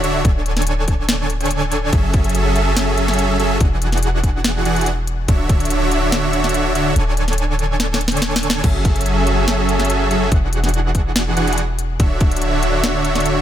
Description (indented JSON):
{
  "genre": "future bass",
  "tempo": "143 BPM",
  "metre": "4/4",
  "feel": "half-time",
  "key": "F# minor",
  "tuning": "A4 = 440 Hz",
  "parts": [
    { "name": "supersaw chords", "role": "riff", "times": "0.0-13.4 s", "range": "D3 to G#5", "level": "-18 LUFS", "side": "right 1 dB", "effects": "sidechain pumping, ping-pong delay" },
    { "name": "warm 808-style bass", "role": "bass", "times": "0.0-13.4 s", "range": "D1 to F#1", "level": "-20 LUFS", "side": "equal", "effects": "sidechain pumping" },
    { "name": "trap drum kit", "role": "drums", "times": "0.0-13.3 s", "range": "crash cymbal, hi-hat, snare drum", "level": "-22 LUFS", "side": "left 1 dB", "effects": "none" },
    { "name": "electronic kick drum", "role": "drums", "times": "0.2-5.6, 8.6-12.3 s", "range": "none", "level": "-16 LUFS", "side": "equal", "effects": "none" }
  ],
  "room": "little or no reverb",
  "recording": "none",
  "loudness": "-15 LUFS",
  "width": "side -11 dB against mid",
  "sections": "0.0-13.4 A section",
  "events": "kick drops out 7.0-8.6; drum fill 7.8-8.6",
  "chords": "0.2 Aadd11/D; 1.9 F#m7; 3.6 E9; 5.3 Dmaj9; 7.0 Aadd11/D; 8.6 F#m7; 10.3 E9; 12.0 Dmaj9",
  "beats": "| 0.25 0.67 1.09 1.51 | 1.93 2.35 2.77 3.19 | 3.61 4.03 4.45 4.87 | 5.29 5.70 6.12 6.54 | 6.96 7.38 7.80 8.22 | 8.64 9.06 9.48 9.90 | 10.32 10.74 11.16 11.58 | 12.00 12.42 12.84 13.26"
}